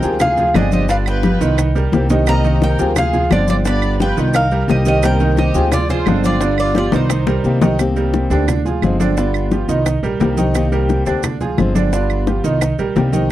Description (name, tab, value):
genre	latin, Cuban son and guajira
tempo	174 BPM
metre	4/4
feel	straight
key	C minor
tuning	A4 = 440 Hz
part	Cuban tres	melody	0.0-7.6 s	C5 to B5	-21 LUFS	equal	tape echo
part	rich chamber violin section	second line	0.0-7.6 s	Eb4 to Eb5	-26 LUFS	right 2 dB	none
part	fingerpicked acoustic archtop guitar	accompaniment	0.0-13.3 s	C3 to G4	-21 LUFS	left 4 dB	none
part	bright grand piano	arpeggios	0.0-13.3 s	D3 to Eb5	-20 LUFS	right 5 dB	none
part	upright bass	bass	0.0-13.3 s	G1 to D2	-18 LUFS	equal	none
part	bongos	percussion	0.0-13.3 s	none	-20 LUFS	left 6 dB	none
part	congas	percussion	0.0-13.3 s	none	-22 LUFS	left 2 dB	none
part	maracas	percussion	0.0-13.3 s	none	-34 LUFS	right 16 dB	none
part	claves	percussion	0.2-12.8 s	none	-27 LUFS	right 16 dB	none
room	little or no reverb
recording	dry, close 1970s-style studio recording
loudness	-13 LUFS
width	side -13 dB against mid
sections	0.0-7.8 A section; 7.8-13.3 B section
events	drum fill 1.2-2.3, 6.9-7.8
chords	0.2 Dm7b5; 0.9 G7; 1.6 Cm7; 3.0 Dm7b5; 3.7 G7; 4.3 Cm7; 5.7 Dm7b5; 6.4 G7; 7.1 Cm7; 8.5 Dm7b5; 9.2 G7; 9.9 Cm7; 11.2 Dm7b5; 11.9 G7; 12.6 Cm7